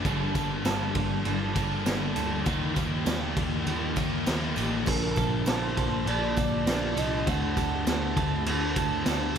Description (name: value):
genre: rock, shoegaze and dream pop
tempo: 100 BPM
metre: 4/4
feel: straight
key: Bb major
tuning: A4 = 440 Hz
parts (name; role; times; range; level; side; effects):
- clean electric guitar; riff; 0.0-9.4 s; G2 to A4; -32 LUFS; right 12 dB; reverse reverb
- distorted electric guitar; riff; 0.0-4.9 s; G2 to Eb4; -34 LUFS; equal; distortion
- thick fuzz guitar; riff; 0.0-9.4 s; G2 to Eb4; -32 LUFS; left 10 dB; distortion, analog chorus
- vintage muted picked electric bass; bass; 0.0-9.4 s; G1 to Eb2; -33 LUFS; equal; none
- raw garage drum kit; drums; 0.0-9.4 s; crash cymbal, kick drum, ride cymbal, snare drum; -29 LUFS; equal; none
- tambourine; percussion; 0.1-9.2 s; none; -46 LUFS; right 9 dB; none
- mellow horn-like synth lead; melody; 4.9-8.5 s; Bb4 to F#5; -35 LUFS; left 1 dB; chorus, phaser, digital delay
room: light reverb, small room ambience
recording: none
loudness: -25 LUFS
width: side -8 dB against mid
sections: 0.0-4.9 A section; 4.9-9.4 A section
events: none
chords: 0.1 Gm9; 2.5 Ebadd9; 4.9 Bbmaj7; 7.3 D7